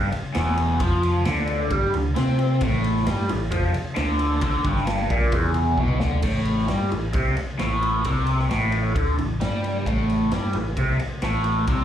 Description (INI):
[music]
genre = blues rock power trio and southern rock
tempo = 132 BPM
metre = 4/4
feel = straight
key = unclear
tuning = A4 = 440 Hz
[part]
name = raw garage guitar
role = riff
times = 0.0-11.8 s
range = E2 to C4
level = -23 LUFS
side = equal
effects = overdrive, phaser, slapback echo
[part]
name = overdriven picked electric bass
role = bass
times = 0.0-11.8 s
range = E1 to C3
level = -24 LUFS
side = equal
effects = none
[part]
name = raw garage drum kit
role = drums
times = 0.1-11.8 s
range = crash cymbal, kick drum, ride cymbal, snare drum, toms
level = -28 LUFS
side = equal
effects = none
[sound]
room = light reverb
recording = live gig heard through the venue's PA, club reverb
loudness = -20 LUFS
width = side -10 dB against mid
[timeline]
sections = 0.0-6.2 A section; 6.2-11.8 A section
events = drum fill 5.8-6.2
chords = 0.0 Em; 0.8 Dm7; 2.6 Gsus2/A; 3.5 Dm; 4.4 E5; 6.2 Am7